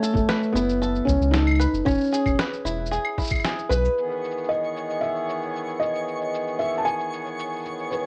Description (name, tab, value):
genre	folktronica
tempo	114 BPM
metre	4/4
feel	straight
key	unclear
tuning	A4 = 440 Hz
part	felt-muted upright piano	melody	0.0-8.1 s	A3 to A5	-26 LUFS	equal	cassette tape, analog delay, plate reverb
part	bluegrass banjo	arpeggios	0.0-4.5 s	C#4 to B4	-32 LUFS	equal	vintage 12-bit sampler grit, cassette tape, plate reverb
part	electronic cabasa, snare drum and claves	drums	0.0-8.0 s	none	-32 LUFS	equal	low-pass filter on snare, studio reverb, cassette tape, low-pass filter on perc
part	warm sub bass	bass	0.1-3.9 s	E1 to C#2	-27 LUFS	equal	none
part	electronic kick drum	drums	0.1-3.4 s	none	-28 LUFS	equal	studio reverb, cassette tape
part	hand-pumped harmonium	sustained chords	4.0-8.1 s	D#3 to G#4	-32 LUFS	equal	cassette tape, plate reverb
part	twinkling granular texture	texture	4.2-8.1 s	C#5 to C#6	-39 LUFS	equal	built-in reverb, cassette tape, plate reverb
room	moderate small room reverb, RT60 0.5 s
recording	home recording on cassette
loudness	-24 LUFS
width	mono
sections	0.0-4.0 A section; 4.0-8.1 B section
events	filter sweep on five-string banjo 0.0-4.0; band accent 3.4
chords	0.0 Aadd9/F#; 1.9 E6; 4.0 Emaj7